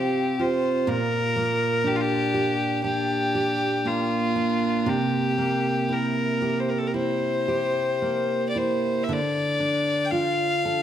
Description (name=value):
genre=celtic folk, Celtic slow air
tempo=55-62 BPM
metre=4/4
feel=rubato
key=unclear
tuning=A4 = 439 Hz
part: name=clear fiddle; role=melody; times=0.0-10.8 s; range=F4 to G5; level=-24 LUFS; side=left 2 dB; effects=none
part: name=picked steel-string acoustic guitar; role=accompaniment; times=0.0-10.8 s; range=Bb2 to A4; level=-25 LUFS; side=right 2 dB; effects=none
room=moderate recital hall reverb, RT60 1.7 s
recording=none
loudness=-22 LUFS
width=side -10 dB against mid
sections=0.0-10.8 A section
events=none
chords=0.0 Fsus2/C; 0.9 Bb6; 4.9 C7; 9.1 Dm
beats=| 0.88 1.85 2.84 3.85 | 4.86 5.90 6.95 8.03 | 9.09 10.13